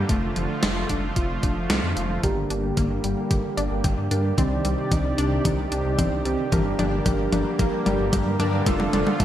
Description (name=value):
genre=synthwave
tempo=112 BPM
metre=4/4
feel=straight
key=G minor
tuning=A4 = 440 Hz
part: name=soft supersaw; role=sustained chords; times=0.0-9.2 s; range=C3 to D5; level=-29 LUFS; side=right 1 dB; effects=sidechain pumping, low-pass filter
part: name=dark detuned saw bass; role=bass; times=0.0-9.2 s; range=F1 to G2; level=-27 LUFS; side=equal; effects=none
part: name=wide unison pluck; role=arpeggios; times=0.1-9.2 s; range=F3 to G4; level=-31 LUFS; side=left 2 dB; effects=digital delay
part: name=electronic kick drum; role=drums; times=0.1-9.2 s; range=none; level=-24 LUFS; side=equal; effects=small room ambience
part: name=gated 80s digital drum machine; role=drums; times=0.1-9.2 s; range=hi-hat, snare drum, toms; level=-27 LUFS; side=equal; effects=gated reverb, gated reverb snare, small room ambience
part: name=chorused polysynth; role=stabs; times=2.2-9.2 s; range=C4 to D5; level=-27 LUFS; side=right 1 dB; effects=digital delay
room=moderate lush hall reverb, RT60 2.1 s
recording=bright 1980s-style digital production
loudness=-21 LUFS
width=side -11 dB against mid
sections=0.0-2.2 A section; 2.2-9.2 B section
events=kick drops out 1.7-2.2; drum fill 2.2-9.2; filter sweep on supersaw synth 2.2-9.2; filter sweep on analog polysynth 2.2-9.2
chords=0.1 Dm/F; 2.2 Gm; 4.4 Cmadd9; 6.5 Gm; 8.7 Dm/F